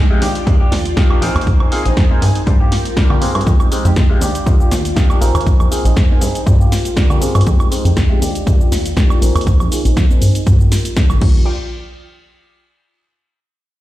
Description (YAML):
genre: filtered disco house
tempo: 120 BPM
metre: 4/4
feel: swing 54% on 16ths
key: Eb major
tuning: A4 = 440 Hz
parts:
  - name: string machine, full ensemble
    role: sustained chords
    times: 0.0-11.5 s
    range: Ab3 to Ab5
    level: -25 LUFS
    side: equal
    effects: ensemble chorus, sidechain pumping, low-pass filter
  - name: electric guitar at the edge of break-up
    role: riff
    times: 0.0-11.4 s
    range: Ab3 to Ab4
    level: -25 LUFS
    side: left 1 dB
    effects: sidechain pumping, low-pass filter
  - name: plucky analog bass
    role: bass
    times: 0.0-11.4 s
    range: G1 to D3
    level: -16 LUFS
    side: equal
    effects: sidechain pumping, low-pass filter
  - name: bright grand piano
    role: accompaniment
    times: 0.1-11.4 s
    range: G3 to Bb4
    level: -24 LUFS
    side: left 1 dB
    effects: phaser, vintage 12-bit sampler grit, sidechain pumping, low-pass filter
  - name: punchy analog drum machine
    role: drums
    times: 0.2-11.3 s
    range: crash cymbal, hi-hat, shaker, snare drum, woodblock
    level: -22 LUFS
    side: right 1 dB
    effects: sidechain pumping on hats, sidechain pumping on perc, sidechain pumping on cymbals
  - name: electronic kick drum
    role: drums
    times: 0.5-11.3 s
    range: none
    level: -13 LUFS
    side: equal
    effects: none
room: digital ambience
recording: played on a big sound system in a bare room, stone room reverb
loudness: -11 LUFS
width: side -15 dB against mid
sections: 0.0-11.5 A section; 11.5-13.5 B section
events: filter sweep 0.0-11.5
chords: 0.2 Ebmaj9; 1.2 Bb9sus4; 2.5 Gm7; 3.5 Fm9; 4.2 Ebmaj9; 5.2 Bb9sus4; 6.5 Gm7; 7.5 Fm9; 8.2 Ebmaj9; 9.2 Bb9sus4; 10.5 Gm7; 11.2 Ebmaj9; 11.5 N.C.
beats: 0.47 0.97 | 1.47 1.97 2.47 2.97 | 3.47 3.97 4.47 4.97 | 5.47 5.97 6.47 6.97 | 7.47 7.97 8.47 8.97 | 9.47 9.97 10.47 10.97